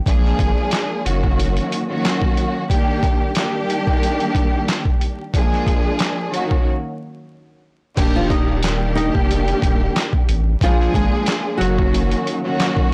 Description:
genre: hip hop, boom-bap hip-hop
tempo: 91 BPM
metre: 4/4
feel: swing 55% on 16ths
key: unclear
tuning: A4 = 437 Hz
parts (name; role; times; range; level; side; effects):
- warm studio string section; accompaniment; 0.1-12.9 s; Eb3 to Ab4; -23 LUFS; equal; cassette tape
- saturated sub bass; bass; 0.1-1.6, 8.0-12.1 s; Eb1 to Bb1; -23 LUFS; equal; tube saturation
- boom bap sampler-style drum kit; drums; 0.1-12.9 s; crash cymbal, handclaps, hi-hat, kick drum, snare drum; -21 LUFS; equal; none
- flamenco guitar; melody; 8.2-12.9 s; F3 to Eb5; -25 LUFS; equal; tape echo
room: light reverb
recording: blown-out, overdriven recording, vinyl crackle, overdrive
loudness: -19 LUFS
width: mono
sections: 0.0-8.0 A section; 8.0-12.9 B section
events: break 6.7-8.0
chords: 0.1 Bb7; 1.1 Gb6; 2.7 Ebmaj7; 5.3 Bb7; 6.3 Gb6; 8.0 Ebmaj7; 10.6 Bb7; 11.6 Gb6

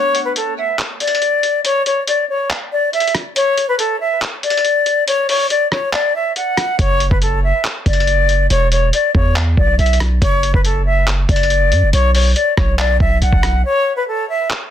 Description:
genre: hip hop, trap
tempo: 140 BPM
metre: 4/4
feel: half-time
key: unclear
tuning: A4 = 440 Hz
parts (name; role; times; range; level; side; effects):
- silver concert flute; melody; 0.0-14.5 s; A4 to F#5; -16 LUFS; left 2 dB; ping-pong delay
- lo-fi sampler-style drum kit; drums; 0.1-14.6 s; handclaps, hi-hat, kick drum, rim click; -18 LUFS; equal; soft clipping on snare
- long sustained 808-style bass; bass; 6.8-13.6 s; E1 to F#2; -15 LUFS; equal; none
room: little or no reverb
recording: dense, heavily limited modern master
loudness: -13 LUFS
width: side -10 dB against mid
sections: 0.0-14.7 A section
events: break 0.0-6.8, 13.6-14.7; kick muted 5.9-6.8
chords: 0.0 N.C.; 8.5 E5; 10.2 N.C.; 11.9 B5; 13.6 N.C.

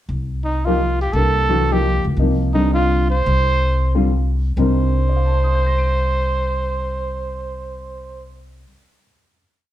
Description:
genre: modal jazz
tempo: 120-173 BPM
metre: 3/4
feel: swing 64% on 8ths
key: C dorian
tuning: A4 = 441 Hz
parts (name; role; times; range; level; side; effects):
- upright bass; bass; 0.1-8.6 s; C2 to Db2; -19 LUFS; equal; none
- mellow trumpet; melody; 0.4-8.3 s; Eb4 to C5; -22 LUFS; right 2 dB; none
- warm baby grand piano; accompaniment; 0.7-9.4 s; C3 to D7; -22 LUFS; left 1 dB; none
room: wet studio reverb, RT60 0.9 s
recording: heard from further back in the room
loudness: -16 LUFS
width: side -12 dB against mid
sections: 0.1-4.6 A section; 4.6-7.6 final chord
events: slowing down 2.2-4.6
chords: 0.1 Cm9; 2.2 Bbadd9/C; 4.6 Cm9

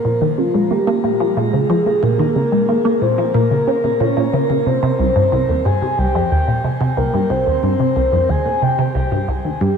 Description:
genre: ambient, sequencer-driven space music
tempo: 91 BPM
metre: 4/4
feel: straight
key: unclear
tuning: A4 = 441 Hz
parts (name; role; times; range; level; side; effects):
- soft octave-layered synth lead; melody; 0.0-9.8 s; F4 to Ab5; -18 LUFS; equal; chorus, phaser, shimmer reverb, analog delay
- resonant blip pluck; riff; 0.0-9.7 s; C2 to Db4; -17 LUFS; equal; phaser, wide subtle chorus, shimmer reverb, analog delay
room: wet plate reverb, RT60 3.5 s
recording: dreamy mix soaked in reverb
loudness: -14 LUFS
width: side -6 dB against mid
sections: 0.0-9.8 A section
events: fade-out 8.2-9.8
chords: 0.0 Bbm7; 4.7 C7(no3)

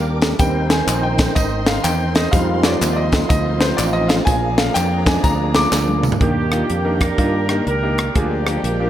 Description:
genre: uptempo gospel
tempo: 124 BPM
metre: 4/4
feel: swing 64% on 8ths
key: Eb major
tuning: A4 = 441 Hz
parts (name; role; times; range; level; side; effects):
- clear baby grand piano; accompaniment; 0.0-8.9 s; D3 to D6; -22 LUFS; left 1 dB; none
- bright tonewheel organ; sustained chords; 0.0-8.9 s; Eb3 to C5; -24 LUFS; right 3 dB; slow rotary speaker, chorus vibrato
- warm studio string section; sustained chords; 0.0-8.9 s; Bb4 to D6; -32 LUFS; left 1 dB; none
- fingered electric bass; bass; 0.0-8.9 s; Ab1 to G2; -21 LUFS; equal; none
- crisp fusion drum kit; drums; 0.2-8.8 s; hi-hat, kick drum, rim click, snare drum, toms; -19 LUFS; equal; none
- tambourine and handclaps; percussion; 0.2-6.1 s; none; -29 LUFS; left 1 dB; none
- warm horn section; melody; 6.2-8.9 s; Bb3 to Bb4; -23 LUFS; right 2 dB; analog delay
room: moderate plate reverb, RT60 1.9 s, small room ambience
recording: dreamy mix soaked in reverb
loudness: -15 LUFS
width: side -11 dB against mid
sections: 0.0-6.2 A section; 6.2-8.9 B section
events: grand piano solo 0.0-6.2; drum fill 5.7-6.2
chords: 0.4 Abmaj7; 2.3 Fm7; 4.3 Bb7; 6.2 Ebmaj7; 8.2 Bb7

